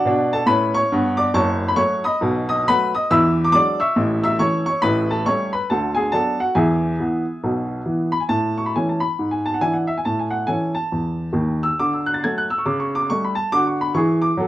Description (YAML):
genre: jazz, stride piano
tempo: 138 BPM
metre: 4/4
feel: swing 63% on 8ths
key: A major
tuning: A4 = 441 Hz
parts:
  - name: warm upright piano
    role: solo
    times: 0.0-14.5 s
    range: F#1 to A6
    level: -17 LUFS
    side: equal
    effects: none
room: moderate club reverb, RT60 0.7 s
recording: dark, warm production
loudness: -17 LUFS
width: side -14 dB against mid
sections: 0.0-8.3 A section; 8.3-14.5 B section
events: none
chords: 0.0 D; 1.4 F#m; 2.2 B7; 3.1 E9; 4.0 A; 4.8 A7; 5.7 D6; 6.6 E; 8.3 A; 9.2 E7/G#; 10.0 A; 11.8 D; 12.7 A7/C#; 13.5 D